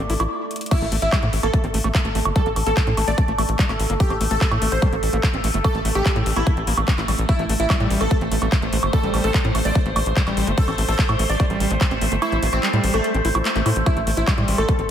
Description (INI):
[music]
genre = psychedelic trance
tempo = 146 BPM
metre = 4/4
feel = straight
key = A minor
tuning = A4 = 442 Hz
[part]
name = overtone-sweeping drone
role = sustained chords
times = 0.0-14.9 s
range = A3 to D5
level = -27 LUFS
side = equal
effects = chorus, built-in reverb, sidechain pumping
[part]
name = tight sequencer bass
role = bass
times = 0.0-14.9 s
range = G1 to A2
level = -23 LUFS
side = equal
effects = none
[part]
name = screaming distorted acid line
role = riff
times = 0.1-14.8 s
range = G3 to E4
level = -28 LUFS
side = moving between left 6 dB and right 6 dB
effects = distortion, chorus, auto-pan, sidechain pumping, diffuse ambient delay
[part]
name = big-room dance drum kit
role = drums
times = 0.1-14.9 s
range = crash cymbal, handclaps, hi-hat, woodblock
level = -26 LUFS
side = right 1 dB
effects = none
[part]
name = supersaw stab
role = melody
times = 0.7-14.7 s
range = A3 to D5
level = -27 LUFS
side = equal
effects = phaser, sidechain pumping, ping-pong delay
[part]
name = electronic kick drum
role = drums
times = 0.7-14.8 s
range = none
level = -21 LUFS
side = equal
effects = overdrive
[sound]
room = moderate lush hall reverb, RT60 1.9 s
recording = dreamy mix soaked in reverb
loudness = -18 LUFS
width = side -9 dB against mid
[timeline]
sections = 0.7-14.9 A section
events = stop 0.3-0.7; drum fill 0.5; drop 0.7-14.9; kick drops out 12.2-13.9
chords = 0.0 A5